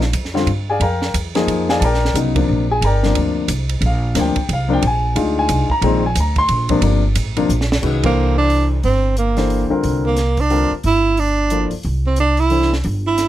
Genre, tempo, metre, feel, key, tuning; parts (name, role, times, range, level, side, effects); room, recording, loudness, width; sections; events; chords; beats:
modal jazz; 180 BPM; 3/4; swing 62% on 8ths; C mixolydian from 7.8 s; A4 = 443 Hz
upright bass; bass; 0.0-13.3 s; G1 to G2; -18 LUFS; right 1 dB
compact cocktail drum kit; drums; 0.0-13.3 s; crash cymbal, hi-hat, kick drum, ride cymbal, snare drum; -25 LUFS; right 3 dB
warm grand piano; accompaniment; 0.3-12.7 s; Bb2 to C6; -18 LUFS; left 3 dB
breathy tenor saxophone; melody; 8.1-13.3 s; Bb3 to E4; -17 LUFS; right 4 dB
little or no reverb; -15 LUFS; side -13 dB against mid
0.0-7.8 A section; 7.8-13.3 B section
drum fill 7.5-7.8; band accent 8.0
0.0 Bb13; 1.8 Gm/Bb; 3.8 Bb13; 5.8 Gm/Bb; 7.8 C13
0.14 0.47 | 0.81 1.14 1.48 | 1.81 2.15 2.48 | 2.82 3.15 3.49 | 3.82 4.16 4.49 | 4.83 5.16 5.49 | 5.83 6.16 6.50 | 6.83 7.16 7.50 | 7.83 8.16 8.50 | 8.83 9.17 9.50 | 9.84 10.17 10.51 | 10.84 11.17 11.51 | 11.84 12.18 12.51 | 12.85 13.18